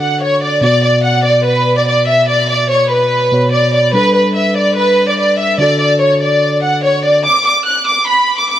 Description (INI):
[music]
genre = hip hop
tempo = 145 BPM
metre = 4/4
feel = half-time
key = unclear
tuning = A4 = 440 Hz
[part]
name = warm studio violin section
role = melody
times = 0.0-8.6 s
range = B4 to F#6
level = -11 LUFS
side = equal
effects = low-pass filter
[part]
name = mellow tine electric piano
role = accompaniment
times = 0.0-7.3 s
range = B2 to D5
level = -16 LUFS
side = equal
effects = low-pass filter
[sound]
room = light reverb, studio reverb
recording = vinyl crackle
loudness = -10 LUFS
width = side -11 dB against mid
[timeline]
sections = 0.0-7.3 A section; 7.3-8.6 B section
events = none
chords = 0.0 D; 0.6 Bm; 3.9 Gadd9; 5.6 D; 7.3 N.C.